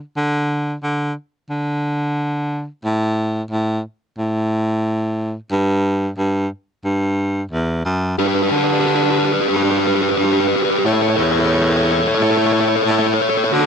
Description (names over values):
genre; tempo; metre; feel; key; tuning
post-rock; 90 BPM; 4/4; straight; unclear; A4 = 439 Hz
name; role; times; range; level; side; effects
clear baritone saxophone; bass; 0.2-13.7 s; E2 to D3; -18 LUFS; equal; none
fuzz guitar; riff; 8.2-13.7 s; F#4 to C#5; -16 LUFS; equal; distortion
room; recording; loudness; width
light reverb, small room ambience; dark, warm production; -16 LUFS; side -7 dB against mid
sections
0.0-8.2 A section; 8.2-13.7 B section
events
build-up 8.2-13.7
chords
0.0 N.C.; 8.2 G; 10.9 A